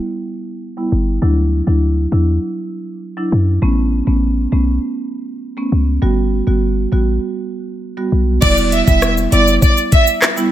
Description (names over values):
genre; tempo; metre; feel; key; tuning
dancehall; 100 BPM; 4/4; straight; E dorian; A4 = 440 Hz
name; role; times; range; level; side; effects
marimba with medium mallets; accompaniment; 0.8-10.5 s; F#3 to F#4; -19 LUFS; right 3 dB; low-pass filter
warm 808-style bass; bass; 0.9-9.6 s; E1 to F#2; -15 LUFS; left 1 dB; none
warm studio violin section; melody; 8.4-10.0 s; D5 to E5; -15 LUFS; right 1 dB; ping-pong delay
afro-pop drum kit; drums; 8.4-10.5 s; crash cymbal, handclaps, hi-hat, kick drum, rim click, shaker; -14 LUFS; left 1 dB; none
room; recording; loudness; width
digital ambience; none; -13 LUFS; side -12 dB against mid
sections
0.0-8.4 A section; 8.4-10.5 B section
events
filter sweep on marimba 0.0-8.4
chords
0.0 Em; 1.2 Dadd9; 3.6 Aadd9; 6.0 Gmaj7; 8.4 Em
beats
0.02 0.62 | 1.22 1.82 2.42 3.02 | 3.62 4.22 4.82 5.42 | 6.02 6.62 7.22 7.82 | 8.42 9.02 9.62 10.22